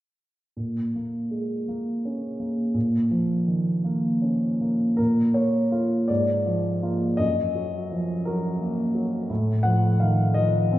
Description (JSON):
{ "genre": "classical, romantic character piece for solo piano", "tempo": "55 BPM (dotted quarters)", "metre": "6/8", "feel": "uneven beats, rubato", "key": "Bb minor", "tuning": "A4 = 438 Hz", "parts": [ { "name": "warm grand piano", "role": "solo", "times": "0.6-10.8 s", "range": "Gb2 to Gb5", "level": "-22 LUFS", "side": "equal", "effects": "none" } ], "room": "wet recital hall reverb, RT60 1.3 s", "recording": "recorded in a church or concert hall", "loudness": "-22 LUFS", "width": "side -14 dB against mid", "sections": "0.6-5.0 A section; 5.0-10.8 B section", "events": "none", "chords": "0.6 Bbm; 6.1 Bb7/Ab; 7.2 Ebm/Gb; 9.3 F7/A" }